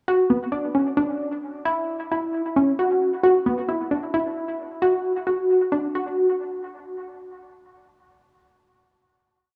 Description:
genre	progressive instrumental, progressive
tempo	266 BPM (eighths)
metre	7/8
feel	straight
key	B minor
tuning	A4 = 440 Hz
part	tight sequenced synth	solo	0.1-6.3 s	B3 to F#4	-23 LUFS	equal	chorus, dub echo
room	wet echo chamber reverb, RT60 1.9 s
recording	echo-heavy mix, small room ambience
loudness	-23 LUFS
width	mono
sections	0.1-6.4 groove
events	none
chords	none

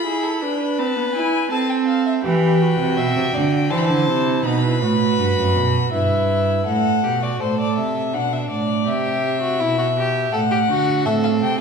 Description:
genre	classical, baroque-style fugue for string quartet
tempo	82 BPM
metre	3/4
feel	straight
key	unclear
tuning	A4 = 438 Hz
part	warm violin	melody	0.0-11.6 s	C5 to B5	-23 LUFS	left 5 dB	none
part	rich violin	second line	0.0-11.6 s	D4 to E5	-24 LUFS	left 2 dB	none
part	warm viola	accompaniment	0.0-6.7, 11.1-11.6 s	B3 to G4	-23 LUFS	right 3 dB	none
part	warm cello	bass	2.2-11.6 s	F#2 to E3	-20 LUFS	right 4 dB	none
room	wet recital hall reverb, RT60 1.6 s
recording	heard from further back in the room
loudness	-17 LUFS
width	side -6 dB against mid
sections	0.0-6.7 A section; 6.7-11.6 B section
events	none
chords	0.1 E; 1.5 Am/C; 2.2 Em; 3.7 C69; 4.4 B; 5.9 Em/G; 6.7 D7/A; 8.1 Asus24; 8.9 Cmaj7; 10.3 D/A; 11.1 Am

